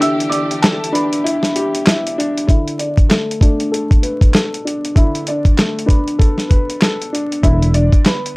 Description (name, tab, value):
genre	hip hop, boom-bap hip-hop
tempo	97 BPM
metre	4/4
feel	swing 58% on 16ths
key	B minor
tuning	A4 = 440 Hz
part	clear upright piano	melody	0.0-8.3 s	A3 to E6	-22 LUFS	equal	high-pass filter, low-pass filter
part	warm grand piano	accompaniment	0.0-8.4 s	D3 to B4	-20 LUFS	left 1 dB	high-pass filter, low-pass filter
part	warm studio string section	sustained chords	0.0-2.5 s	E3 to G4	-27 LUFS	equal	high-pass filter, low-pass filter
part	dusty soul sampler-style drum kit	drums	0.0-8.4 s	handclaps, hi-hat, kick drum, snare drum	-13 LUFS	equal	none
part	fingered electric bass	bass	7.4-7.9 s	E1	-13 LUFS	equal	none
room	little or no reverb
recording	dry, gritty hardware recording, transformer saturation, vinyl crackle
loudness	-13 LUFS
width	side -24 dB against mid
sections	0.0-2.5 A section; 2.5-8.4 B section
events	break 0.0-2.5; filter sweep 2.5-8.4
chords	0.0 Em7; 2.5 Bm7; 7.4 E7(no3)